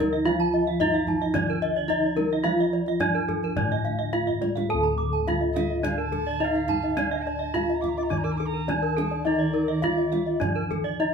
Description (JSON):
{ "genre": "Balinese gamelan", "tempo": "107 BPM", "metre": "4/4", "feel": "uneven beats", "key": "D pelog", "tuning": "A4 = 440 Hz", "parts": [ { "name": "gamelan-type bronze metallophone", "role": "melody", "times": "0.0-11.1 s", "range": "D4 to A4-30c", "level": "-26 LUFS", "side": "right 2 dB", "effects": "none" }, { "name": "gamelan-type bronze metallophone", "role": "accompaniment", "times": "0.0-4.7, 9.3-11.1 s", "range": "D3 to F3-30c", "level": "-33 LUFS", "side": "right 2 dB", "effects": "none" }, { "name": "gamelan-type bronze metallophone", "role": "arpeggios", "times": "0.0-11.1 s", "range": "A4-30c to D6", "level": "-30 LUFS", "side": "left 4 dB", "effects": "none" }, { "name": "gamelan-type bossed gongs", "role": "bass", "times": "0.0-11.1 s", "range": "D2 to A4-30c", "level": "-30 LUFS", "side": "left 2 dB", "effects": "none" }, { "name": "kendang", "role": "percussion", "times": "0.0-11.1 s", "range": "none", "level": "-33 LUFS", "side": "right 2 dB", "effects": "none" }, { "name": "gamelan-type bronze metallophone", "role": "arpeggios", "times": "0.1-11.0 s", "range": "A4-30c to Bb5-20c", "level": "-34 LUFS", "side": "right 7 dB", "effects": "none" }, { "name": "soprano recorder", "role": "second line", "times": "5.5-10.7 s", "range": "D5 to D6", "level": "-34 LUFS", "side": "right 4 dB", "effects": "none" } ], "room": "wet studio reverb, RT60 0.5 s", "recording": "band playing live in one room", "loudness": "-22 LUFS", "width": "side -6 dB against mid", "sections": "0.0-4.7 A section; 4.7-11.1 B section", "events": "drum fill 4.3-4.7", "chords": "none", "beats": "| 0.26 0.80 1.34 1.89 | 2.45 3.00 3.56 4.13 | 4.70 5.27 5.84 6.41 | 6.98 7.55 8.12 8.69 | 9.26 9.83 10.41 11.00" }